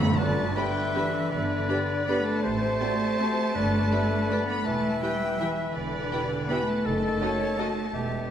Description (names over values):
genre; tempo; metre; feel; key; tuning
classical; 163 BPM; 3/4; uneven beats, rubato; G major; A4 = 435 Hz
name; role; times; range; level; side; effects
warm studio violin section; melody; 0.0-8.3 s; D5 to B5; -35 LUFS; left 2 dB; none
warm studio cello section; bass; 0.0-8.3 s; F#2 to B3; -30 LUFS; right 1 dB; none
timpani; percussion; 0.0-0.2, 3.6-4.1 s; G2 to D3; -30 LUFS; equal; none
clear oboe; second line; 0.2-8.3 s; G4 to C5; -33 LUFS; equal; none
silver concert flute; second line; 0.2-8.3 s; A4 to E5; -33 LUFS; left 2 dB; none
mellow bassoon; accompaniment; 0.2-8.3 s; B2 to E3; -34 LUFS; left 2 dB; none
warm studio double bass section; bass; 0.2-8.2 s; E1 to A1; -34 LUFS; right 2 dB; none
warm studio violin section; second line; 0.6-7.7 s; A4 to B5; -41 LUFS; left 4 dB; none
dark studio viola section; accompaniment; 0.6-7.7 s; C4 to G4; -37 LUFS; right 1 dB; none
warm French horn section; sustained chords; 0.6-7.7 s; C4 to G4; -41 LUFS; left 4 dB; none
dark trumpet section; stabs; 0.6-7.7 s; A4 to C5; -39 LUFS; right 1 dB; none
room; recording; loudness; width
wet scoring stage reverb, RT60 1.7 s; faint mains hum; -24 LUFS; side -9 dB against mid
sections
0.2-8.3 A section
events
timpani fill 0.0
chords
0.2 G; 2.4 F#dim/A; 3.5 G; 4.7 Em; 6.9 D#dim/F#